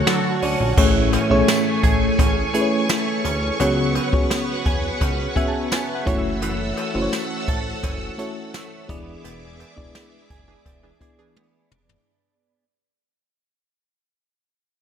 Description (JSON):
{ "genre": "1980s-style pop", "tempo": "85 BPM", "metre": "4/4", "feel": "straight", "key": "A major", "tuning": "A4 = 440 Hz", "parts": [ { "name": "FM electric piano with auto-pan", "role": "accompaniment", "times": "0.0-12.1 s", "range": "A2 to A5", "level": "-23 LUFS", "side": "left 2 dB", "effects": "none" }, { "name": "string machine, cellos", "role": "sustained chords", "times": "0.0-12.0 s", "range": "A3 to E6", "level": "-26 LUFS", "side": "right 1 dB", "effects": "ensemble chorus" }, { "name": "direct-recorded clean electric guitar", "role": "riff", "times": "0.0-12.6 s", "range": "E3 to A4", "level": "-29 LUFS", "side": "right 5 dB", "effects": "ensemble chorus, digital delay" }, { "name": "chorused synth bass", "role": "bass", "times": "0.0-12.0 s", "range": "E1 to D3", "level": "-26 LUFS", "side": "equal", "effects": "none" }, { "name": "funky polysynth comp", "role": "stabs", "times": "0.1-0.4, 10.5-11.7 s", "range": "D3 to A4", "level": "-25 LUFS", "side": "right 2 dB", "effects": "chorus" }, { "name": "jazz brush drum kit", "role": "drums", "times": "0.1-12.1 s", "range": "crash cymbal, hi-hat, kick drum, snare drum, tambourine, toms", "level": "-22 LUFS", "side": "equal", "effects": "none" }, { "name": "cowbell", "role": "percussion", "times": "0.1-11.5 s", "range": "none", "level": "-36 LUFS", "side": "left 7 dB", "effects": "none" } ], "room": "light reverb, small room ambience", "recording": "none", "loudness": "-18 LUFS", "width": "side -8 dB against mid", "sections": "0.8-12.1 A section", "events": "FM electric piano fill 0.0-0.8, 5.0-6.4; fade-out 0.8-12.1; band accent 9.2-12.1; drum fill 11.4-12.1", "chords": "0.0 Dmaj7; 0.8 Amaj7; 3.6 C#7sus4; 6.1 F#m7; 8.9 E7" }